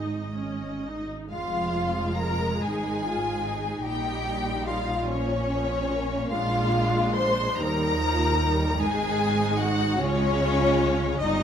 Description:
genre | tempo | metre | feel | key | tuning
classical, slow romantic movement for string orchestra | 48 BPM (dotted quarters) | 6/8 | uneven beats, rubato | unclear | A4 = 440 Hz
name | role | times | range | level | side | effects
bright chamber violin section | melody | 0.0-11.4 s | Db5 to C6 | -29 LUFS | left 3 dB | none
rich chamber viola section | accompaniment | 0.0-11.4 s | F3 to F4 | -29 LUFS | right 1 dB | none
rich chamber cello section | bass | 0.0-11.4 s | Eb2 to Db3 | -32 LUFS | right 2 dB | none
rich chamber double bass section | bass | 0.0-11.4 s | F1 to Eb2 | -31 LUFS | right 1 dB | none
rich chamber violin section | second line | 1.3-11.4 s | Db4 to C5 | -29 LUFS | left 2 dB | none
room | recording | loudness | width
moderate recital hall reverb, RT60 1.6 s | lossy compression artefacts | -23 LUFS | side -8 dB against mid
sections
0.0-1.3 A section; 1.3-11.4 B section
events
none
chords
0.0 Ab5; 1.3 Fm7; 3.9 Bbm; 6.3 Bb7; 7.6 Eb; 8.8 Ab5; 10.0 Db

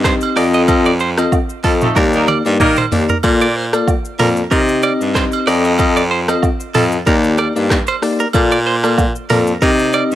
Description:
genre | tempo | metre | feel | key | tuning
afrobeats | 94 BPM | 4/4 | swing 55% on 16ths | Bb major | A4 = 440 Hz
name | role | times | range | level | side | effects
bell-like tine electric piano | accompaniment | 0.0-10.2 s | Bb3 to Eb5 | -16 LUFS | left 3 dB | none
direct-recorded clean electric guitar | riff | 0.0-10.0 s | A4 to Eb5 | -20 LUFS | right 5 dB | tape echo
bright baritone saxophone | bass | 0.0-10.2 s | Eb2 to Eb3 | -17 LUFS | equal | none
afro-pop drum kit | drums | 0.0-10.2 s | handclaps, hi-hat, kick drum, rim click, shaker, toms | -18 LUFS | right 1 dB | none
agogo bells and woodblock | percussion | 0.2-10.1 s | none | -25 LUFS | right 8 dB | none
mellow horn section | second line | 1.8-2.8 s | F3 to Bb4 | -19 LUFS | right 1 dB | none
room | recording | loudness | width
light reverb, digital ambience | none | -12 LUFS | side -13 dB against mid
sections
0.0-10.2 A section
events
band accent 0.7-3.2; drum fill 2.0-3.2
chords
0.4 F7; 2.0 Ebmaj7; 3.2 Bbmaj7; 4.5 Cm; 5.5 F7; 7.1 Ebmaj7; 8.3 Bbmaj7; 9.6 Cm

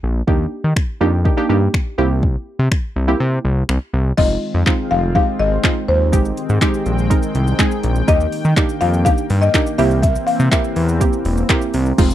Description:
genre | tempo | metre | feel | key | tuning
dance-pop | 123 BPM | 4/4 | straight | unclear | A4 = 441 Hz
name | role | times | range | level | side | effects
fat analog bass | bass | 0.0-12.1 s | E1 to Eb3 | -17 LUFS | equal | sidechain pumping
glassy wavetable pluck | accompaniment | 0.3-12.1 s | Ab3 to Bb4 | -21 LUFS | right 3 dB | chorus, sidechain pumping
deep house drum kit | drums | 0.3-12.1 s | crash cymbal, finger snaps, handclaps, hi-hat, kick drum, shaker | -17 LUFS | equal | none
buzzing marimba with medium mallets | melody | 4.2-11.7 s | C5 to F5 | -20 LUFS | left 3 dB | slapback echo
chorused pulse-width pad | sustained chords | 4.2-12.1 s | Eb3 to G5 | -25 LUFS | left 2 dB | sidechain pumping
room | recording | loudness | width
little or no reverb | dry, close 1970s-style studio recording | -14 LUFS | side -12 dB against mid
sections
0.0-4.2 A section; 4.2-12.0 B section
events
kick muted 3.2-4.2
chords
0.3 Ebmaj7; 2.0 C7; 4.2 Fm7; 6.1 Abmaj7; 8.1 Ebmaj7; 9.8 C7

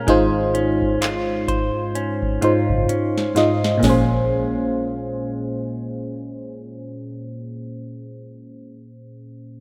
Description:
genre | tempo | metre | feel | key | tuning
contemporary R&B | 64 BPM | 4/4 | swing 58% on 16ths | Bb minor | A4 = 442 Hz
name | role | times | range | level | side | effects
FM electric piano | accompaniment | 0.0-9.6 s | Ab2 to Bb5 | -23 LUFS | equal | chorus, low-pass filter
direct-recorded clean electric guitar | arpeggios | 0.0-8.8 s | Bb2 to C5 | -31 LUFS | equal | low-pass filter
vintage muted fingered electric bass | bass | 0.1-8.7 s | Gb1 to Bb1 | -31 LUFS | equal | none
booming analog drum machine | drums | 0.1-4.1 s | handclaps, hi-hat, kick drum, snare drum | -28 LUFS | equal | none
room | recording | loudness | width
moderate lush hall reverb, RT60 2.5 s | rough home demo mix | -20 LUFS | mono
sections
0.0-3.8 A section; 3.8-7.6 B section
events
drum fill 2.9-3.8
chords
0.1 Dbmaj7/Ab; 3.8 Bbm7

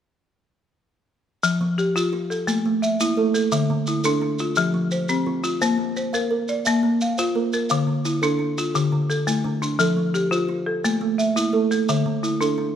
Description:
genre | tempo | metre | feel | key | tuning
southern african traditional, mbira-style interlocking cycle | 115 BPM (dotted quarters) | 12/8 | straight | F major | A4 = 440 Hz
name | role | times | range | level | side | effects
folk marimba with hard mallets | arpeggios | 1.4-12.8 s | D3 to F5 | -21 LUFS | left 3 dB | none
maracas | percussion | 1.4-12.6 s | none | -31 LUFS | right 3 dB | none
kalimba | arpeggios | 1.6-12.8 s | D3 to F5 | -25 LUFS | right 5 dB | none
room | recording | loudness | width
moderate recital hall reverb, RT60 1.5 s | none | -20 LUFS | side -9 dB against mid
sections
1.4-12.8 A section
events
none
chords
1.4 F; 2.5 A5; 3.5 Dm; 4.6 F5; 5.6 Bb; 7.7 Dm; 9.8 F; 10.8 A5; 11.9 D5

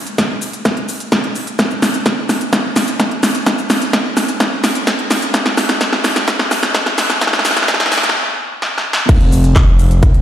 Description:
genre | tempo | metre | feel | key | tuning
EDM, festival progressive house | 128 BPM | 4/4 | straight | unclear | A4 = 440 Hz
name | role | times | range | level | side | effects
big-room dance drum kit | drums | 0.1-10.2 s | crash cymbal, handclaps, hi-hat, shaker, snare drum | -14 LUFS | equal | overdrive
electronic kick drum | drums | 0.2-10.1 s | none | -13 LUFS | equal | overdrive, high-pass filter on kick
fat analog bass | bass | 9.1-10.2 s | F1 | -12 LUFS | equal | sidechain pumping
room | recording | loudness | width
wet lush hall reverb, RT60 1.7 s | played on a big sound system in a bare room, stone room reverb, high-pass filter | -12 LUFS | side -11 dB against mid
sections
0.0-9.1 A section; 9.1-10.2 B section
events
build-up 0.0-9.1; drum fill 0.0-8.2, 8.6-9.1; filter sweep 0.0-9.1; stop 8.2-9.1; drop 9.1-10.2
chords
none

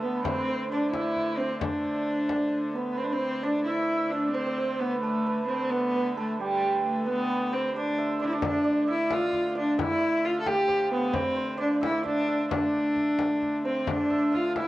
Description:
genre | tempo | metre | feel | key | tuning
medieval dance | 88 BPM (dotted quarters) | 6/8 | straight | D dorian | A4 = 441 Hz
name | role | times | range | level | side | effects
dark viola da gamba | melody | 0.0-14.7 s | G3 to A4 | -26 LUFS | equal | cassette tape
hammered dulcimer | second line | 0.0-14.7 s | G4 to G5 | -31 LUFS | right 4 dB | cassette tape
rich hurdy-gurdy | drone | 0.0-14.7 s | D3 to A3 | -37 LUFS | left 1 dB | cassette tape
frame drum | percussion | 0.2-2.5, 8.4-14.7 s | none | -34 LUFS | left 5 dB | none
room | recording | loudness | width
moderate spring reverb, RT60 1.6 s, small room reverb | home recording on cassette | -24 LUFS | side -16 dB against mid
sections
0.0-3.0 A section; 3.0-13.9 A section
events
none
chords
none

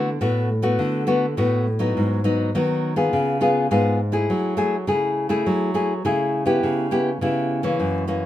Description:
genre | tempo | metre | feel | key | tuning
samba | 103 BPM | 4/4 | straight | F# minor | A4 = 440 Hz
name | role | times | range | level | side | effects
nylon-string guitar | solo | 0.0-8.3 s | F#2 to G#4 | -19 LUFS | left 1 dB | none
room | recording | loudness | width
moderate large studio reverb, RT60 0.9 s | minimal, uncompressed stereo recording | -19 LUFS | side -12 dB against mid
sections
0.0-8.3 A section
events
none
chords
0.0 D6; 2.0 G#m7; 3.1 C#7; 4.3 F#m9; 6.6 C#m7b5

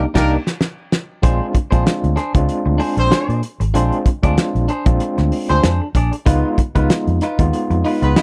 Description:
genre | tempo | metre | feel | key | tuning
funk | 95 BPM | 4/4 | swing 56% on 16ths | Bb mixolydian | A4 = 440 Hz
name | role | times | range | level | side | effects
clean electric guitar | accompaniment | 0.0-8.2 s | D4 to D5 | -25 LUFS | equal | none
overdriven tine electric piano | stabs | 0.0-8.2 s | Ab3 to G4 | -23 LUFS | equal | fast tremolo
vintage muted fingered electric bass | bass | 0.0-8.1 s | Ab1 to Bb2 | -20 LUFS | equal | none
mellow horn section | second line | 0.2-8.2 s | Bb3 to C5 | -22 LUFS | equal | none
warm soul drum kit | drums | 0.2-8.2 s | crash cymbal, hi-hat, kick drum, snare drum | -19 LUFS | equal | none
room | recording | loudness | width
little or no reverb | none | -17 LUFS | mono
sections
0.0-1.2 A section; 1.2-8.2 B section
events
drum fill 0.0-1.2; band accent 0.0-1.2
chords
0.0 Cm9; 1.2 Bb9; 6.3 Db9

